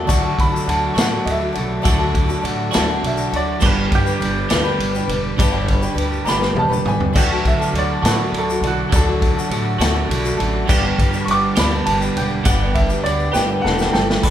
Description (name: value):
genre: folk rock and heartland rock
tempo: 68 BPM (dotted quarters)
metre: 6/8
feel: straight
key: D major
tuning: A4 = 440 Hz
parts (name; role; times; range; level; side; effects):
- picked twelve-string acoustic guitar; accompaniment; 0.0-14.3 s; G2 to B4; -24 LUFS; left 4 dB; none
- mellow tonewheel organ; sustained chords; 0.0-14.3 s; A4 to D6; -32 LUFS; left 1 dB; none
- twelve-string electric guitar; riff; 0.0-14.3 s; G2 to G4; -23 LUFS; right 5 dB; phaser
- upright bass; bass; 0.0-14.3 s; E1 to D3; -24 LUFS; equal; none
- vintage drum kit; drums; 0.1-14.3 s; crash cymbal, hi-hat, kick drum, ride cymbal, snare drum, toms; -20 LUFS; equal; none
- egg shaker; percussion; 0.1-14.0 s; none; -34 LUFS; left 4 dB; none
- bright upright piano; second line; 0.4-14.2 s; F#4 to D6; -24 LUFS; right 1 dB; none
- clear grand piano; melody; 13.3-14.3 s; F#5 to B5; -22 LUFS; equal; none
room: moderate large studio reverb, RT60 0.9 s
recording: band playing live in one room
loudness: -16 LUFS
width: side -10 dB against mid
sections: 0.1-14.2 A section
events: upright piano solo 0.1-14.2; drum fill 6.3-7.2, 13.4-14.2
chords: 0.1 D; 3.6 G; 7.2 D; 10.7 G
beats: | 0.07 0.96 | 1.84 2.73 | 3.61 4.50 | 5.38 6.27 | 7.16 8.04 | 8.93 9.81 | 10.70 11.58 | 12.47 13.35 | 14.23